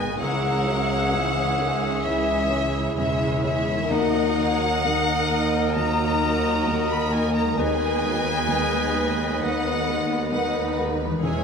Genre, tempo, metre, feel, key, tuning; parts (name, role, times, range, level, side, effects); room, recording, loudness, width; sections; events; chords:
cinematic; 65 BPM; 4/4; rubato; G# minor; A4 = 436 Hz
rich studio violin section; melody; 0.0-11.4 s; E5 to B5; -28 LUFS; left 3 dB
clear oboe; second line; 0.0-11.4 s; D#5 to E5; -32 LUFS; equal
mellow clarinet; second line; 0.0-11.4 s; G#4 to C#5; -32 LUFS; left 1 dB
rich studio violin section; second line; 0.0-11.4 s; F#4 to D#5; -31 LUFS; left 1 dB
silver concert flute; second line; 0.0-11.4 s; E5 to B5; -31 LUFS; left 1 dB
dark baby grand piano; accompaniment; 0.0-11.4 s; E1 to E5; -29 LUFS; right 1 dB
dark studio viola section; accompaniment; 0.0-11.4 s; D#3 to E4; -30 LUFS; right 1 dB
dark French horn section; sustained chords; 0.0-11.4 s; G#3 to E4; -32 LUFS; left 2 dB
concert harp; arpeggios; 0.0-11.4 s; C#3 to E5; -31 LUFS; left 6 dB
clear studio cello section; bass; 0.0-11.4 s; C#2 to G#2; -33 LUFS; right 4 dB
rich studio double bass section; bass; 0.0-11.4 s; E1 to D#2; -31 LUFS; right 3 dB
timpani; percussion; 3.9-5.3 s; D#3; -32 LUFS; equal
wet scoring stage reverb, RT60 1.4 s; minimal, uncompressed stereo recording; -20 LUFS; side -6 dB against mid
0.0-11.4 A section
0.2 C#m; 3.9 D#m; 7.6 G#m/D#